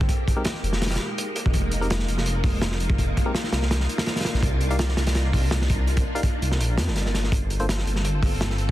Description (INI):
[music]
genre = drum and bass, jungle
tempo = 166 BPM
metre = 4/4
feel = swing 53% on 16ths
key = unclear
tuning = A4 = 438 Hz
[part]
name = soft string machine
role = sustained chords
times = 0.0-8.7 s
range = Ab3 to A4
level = -31 LUFS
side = equal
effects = ensemble chorus, vintage 12-bit sampler grit
[part]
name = dark detuned saw bass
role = bass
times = 0.0-8.7 s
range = Eb1 to F2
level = -24 LUFS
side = equal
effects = none
[part]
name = crunchy breakbeat drum kit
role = drums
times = 0.0-8.7 s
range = hi-hat, kick drum, snare drum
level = -24 LUFS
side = equal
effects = none
[part]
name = bright tine electric piano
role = stabs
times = 0.4-7.6 s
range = Ab3 to F5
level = -33 LUFS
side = left 2 dB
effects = dub echo
[sound]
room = small room ambience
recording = dense, heavily limited modern master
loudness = -21 LUFS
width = side -15 dB against mid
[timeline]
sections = 0.0-7.3 A section; 7.3-8.7 A section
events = drop 0.0-7.3, 7.3-8.7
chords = 0.1 Fm11; 3.7 Cm11; 7.3 Gm11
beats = | 0.09 0.45 0.82 1.18 | 1.54 1.90 2.26 2.62 | 2.98 3.35 3.71 4.07 | 4.43 4.79 5.15 5.51 | 5.88 6.24 6.60 6.96 | 7.32 7.68 8.04 8.41